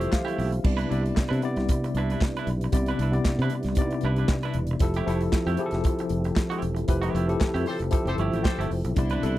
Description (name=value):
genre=disco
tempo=115 BPM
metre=4/4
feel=straight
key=C major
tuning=A4 = 440 Hz
part: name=barky tine electric piano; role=accompaniment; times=0.0-9.4 s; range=B2 to F5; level=-28 LUFS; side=left 3 dB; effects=overdrive, auto-pan
part: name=semi-hollow electric guitar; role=accompaniment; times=0.0-9.4 s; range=A3 to B4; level=-34 LUFS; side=right 7 dB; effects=none
part: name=mellow tonewheel organ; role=sustained chords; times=0.0-9.4 s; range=C3 to A4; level=-34 LUFS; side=right 1 dB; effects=chorus vibrato, slow rotary speaker
part: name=dark horn section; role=stabs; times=0.0-0.3, 7.7-8.6 s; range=C4 to C5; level=-33 LUFS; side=left 2 dB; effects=none
part: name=fingered electric bass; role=bass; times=0.0-9.4 s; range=E1 to C3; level=-27 LUFS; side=equal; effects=none
part: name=modern studio drum kit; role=drums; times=0.0-9.4 s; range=crash cymbal, hi-hat, kick drum, snare drum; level=-25 LUFS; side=right 1 dB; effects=none
part: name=group handclap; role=percussion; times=0.1-8.6 s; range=none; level=-40 LUFS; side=left 7 dB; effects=none
part: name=rich studio string section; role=second line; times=9.0-9.4 s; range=G3 to C5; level=-39 LUFS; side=left 3 dB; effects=none
room=little or no reverb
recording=dry, close 1970s-style studio recording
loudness=-23 LUFS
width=side -15 dB against mid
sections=0.6-9.4 A section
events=band accent 6.9-9.0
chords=0.0 Fmaj9; 0.6 Cmaj9; 4.8 Fmaj9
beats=0.12 | 0.65 1.17 1.69 2.21 | 2.73 3.25 3.77 4.29 | 4.81 5.33 5.85 6.37 | 6.89 7.41 7.93 8.45 | 8.97